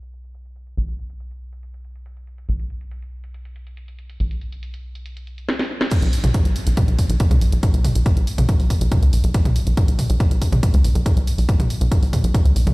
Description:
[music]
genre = driving peak-time techno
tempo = 140 BPM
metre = 4/4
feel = straight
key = B minor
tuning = A4 = 440 Hz
[part]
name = tight sequencer bass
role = bass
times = 0.0-12.7 s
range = B1 to D2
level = -21 LUFS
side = equal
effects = tube saturation, sidechain pumping
[part]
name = techno drum kit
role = drums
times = 0.0-12.7 s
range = crash cymbal, hi-hat, snare drum, toms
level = -25 LUFS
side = equal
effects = low-pass filter on hats, low-pass filter on snare, low-pass filter on cymbals, low-pass filter on toms, low-pass filter on room
[part]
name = electronic kick drum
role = drums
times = 5.9-12.4 s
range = none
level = -17 LUFS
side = equal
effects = none
[sound]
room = little or no reverb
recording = played on a big sound system in a bare room, large studio reverb, low-pass filter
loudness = -16 LUFS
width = side -24 dB against mid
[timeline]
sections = 0.0-5.9 A section; 5.9-12.7 B section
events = filter sweep 0.0-5.9; drum fill 5.5-5.9; drop 5.9-12.7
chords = none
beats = 0.34 | 0.77 1.20 1.63 2.06 | 2.49 2.92 3.35 3.77 | 4.20 4.63 5.06 5.49 | 5.92 6.34 6.77 7.20 | 7.63 8.06 8.49 8.92 | 9.35 9.77 10.20 10.63 | 11.06 11.49 11.92 12.35

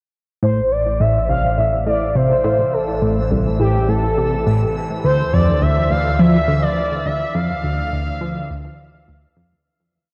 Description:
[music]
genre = ambient, sequencer-driven space music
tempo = 104 BPM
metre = 4/4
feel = straight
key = A minor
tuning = A4 = 438 Hz
[part]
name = expressive portamento lead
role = melody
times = 0.4-9.1 s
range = G4 to F5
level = -22 LUFS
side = equal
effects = analog chorus, analog delay
[part]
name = tight sequenced synth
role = riff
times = 0.4-9.5 s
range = C2 to F3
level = -21 LUFS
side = equal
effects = chorus, phaser, analog delay
[part]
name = fat analog bass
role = bass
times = 0.4-9.6 s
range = A1 to D2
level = -26 LUFS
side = equal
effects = none
[part]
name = bubbling stepped-filter texture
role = texture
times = 0.4-9.7 s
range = E3 to E6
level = -34 LUFS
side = equal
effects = chorus, built-in reverb
[sound]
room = wet huge ambient reverb, RT60 8.4 s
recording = worn, warbling old tape, cassette tape, warbly pitch drift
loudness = -18 LUFS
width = mono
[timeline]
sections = 0.4-9.7 A section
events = fade-in on synth texture 0.4-9.7; fade-out 6.6-9.7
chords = 0.4 Am; 5.0 Dm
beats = | 0.42 1.00 1.58 2.16 | 2.73 3.31 3.89 4.46 | 5.04 5.62 6.20 6.77 | 7.35 7.92 8.50 9.08

